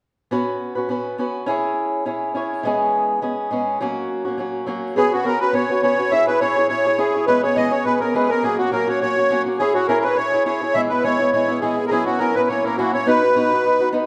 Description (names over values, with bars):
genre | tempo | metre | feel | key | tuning
celtic folk, Celtic reel | 207 BPM | 4/4 | swing 54% on 8ths | unclear | A4 = 441 Hz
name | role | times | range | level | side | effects
fingerpicked swing-style acoustic guitar | accompaniment | 0.3-14.1 s | E3 to C#5 | -23 LUFS | equal | none
accordion | melody | 5.0-13.9 s | F#4 to E5 | -20 LUFS | equal | light tremolo tuning
room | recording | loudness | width
wet recital hall reverb, RT60 1.6 s | none | -20 LUFS | mono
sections
0.3-5.0 A section; 5.0-14.1 B section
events
none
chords
0.3 Bsus2; 1.5 C#m; 2.6 E6; 3.8 F#; 5.0 Bsus2; 6.1 C#m; 7.3 E6; 8.4 F#; 9.6 C#m; 10.7 E; 11.9 F#7sus4; 12.5 F#7; 13.1 B